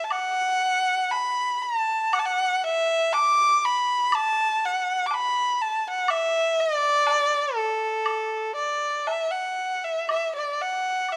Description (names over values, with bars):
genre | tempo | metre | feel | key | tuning
chinese traditional, Chinese chamber ensemble | 60 BPM | 2/4 | rubato | A zhi mode | A4 = 440 Hz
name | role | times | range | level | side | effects
rich erhu | melody | 0.0-11.2 s | A4 to D6 | -24 LUFS | equal | none
woodblock | percussion | 0.1-11.2 s | none | -32 LUFS | equal | none
room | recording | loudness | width
light reverb | close, detailed microphones | -24 LUFS | mono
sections
0.0-10.1 A section; 10.1-11.2 B section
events
none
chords
none